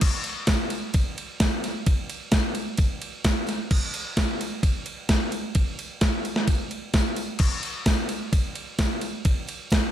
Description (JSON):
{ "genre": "rock", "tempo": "130 BPM", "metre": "4/4", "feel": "straight", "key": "none", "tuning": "none", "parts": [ { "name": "clean 12-bit digital drum machine", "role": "drums", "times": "0.0-9.8 s", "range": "crash cymbal, kick drum, ride cymbal, snare drum", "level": "-23 LUFS", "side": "equal", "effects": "none" }, { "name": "tambourine", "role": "percussion", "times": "0.0-9.8 s", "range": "none", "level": "-42 LUFS", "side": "right 2 dB", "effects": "none" } ], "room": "light reverb", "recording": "none", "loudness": "-23 LUFS", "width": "side -11 dB against mid", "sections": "0.0-9.9 A section", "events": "none", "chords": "none" }